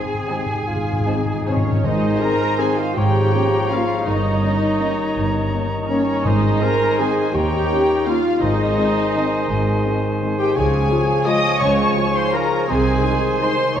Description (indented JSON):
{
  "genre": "classical, orchestral ballroom waltz",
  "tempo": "144-183 BPM",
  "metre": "3/4",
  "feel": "rubato",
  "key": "Ab major",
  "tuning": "A4 = 440 Hz",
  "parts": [
    { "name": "muted studio violin section", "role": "melody", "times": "0.0-13.8 s", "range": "Db5 to Eb6", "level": "-29 LUFS", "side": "left 3 dB", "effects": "none" },
    { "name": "silver concert flute", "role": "second line", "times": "0.0-13.8 s", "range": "Ab5 to Bb5", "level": "-30 LUFS", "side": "equal", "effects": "none" },
    { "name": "mellow bassoon", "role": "accompaniment", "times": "0.0-13.8 s", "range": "Eb3 to G4", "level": "-28 LUFS", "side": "right 2 dB", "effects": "none" },
    { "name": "dark French horn section", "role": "sustained chords", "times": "0.0-13.5 s", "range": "Ab3 to F4", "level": "-28 LUFS", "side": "left 3 dB", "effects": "none" },
    { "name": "concert harp", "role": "arpeggios", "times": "0.0-13.8 s", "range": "G2 to G4", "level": "-25 LUFS", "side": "left 5 dB", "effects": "none" },
    { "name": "muted studio cello section", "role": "bass", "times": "0.0-13.8 s", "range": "Eb2 to Ab4", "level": "-26 LUFS", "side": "right 2 dB", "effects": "none" },
    { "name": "timpani", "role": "percussion", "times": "0.0-3.5, 6.3-8.9 s", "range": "Ab2 to Eb3", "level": "-25 LUFS", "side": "equal", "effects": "none" },
    { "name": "muted studio violin section", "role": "second line", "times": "0.3-13.8 s", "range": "C5 to Eb6", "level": "-28 LUFS", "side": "left 2 dB", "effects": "none" },
    { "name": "muted studio viola section", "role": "accompaniment", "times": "0.3-13.8 s", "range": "C4 to Eb5", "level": "-23 LUFS", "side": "right 1 dB", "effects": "none" },
    { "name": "muted studio double bass section", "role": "bass", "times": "0.7-13.8 s", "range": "G1 to Eb2", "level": "-26 LUFS", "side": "right 3 dB", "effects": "none" },
    { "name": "dark clarinet", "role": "second line", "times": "1.5-13.8 s", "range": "Db4 to Eb5", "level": "-27 LUFS", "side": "left 1 dB", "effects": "none" },
    { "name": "warm oboe", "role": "second line", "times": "1.9-13.8 s", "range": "C5 to Db5", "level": "-28 LUFS", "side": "right 1 dB", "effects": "none" }
  ],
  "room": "wet scoring stage reverb, RT60 1.9 s",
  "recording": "dark, warm production",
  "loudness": "-16 LUFS",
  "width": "side -9 dB against mid",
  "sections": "0.0-1.8 A section; 1.8-13.8 A section",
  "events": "timpani fill 0.0-1.8",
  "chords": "0.0 Ab; 3.0 Bbm7/Ab; 4.1 Eb7/G; 6.2 Ab; 7.3 Eb7; 8.4 Ab; 10.6 Db; 12.7 Ab/C"
}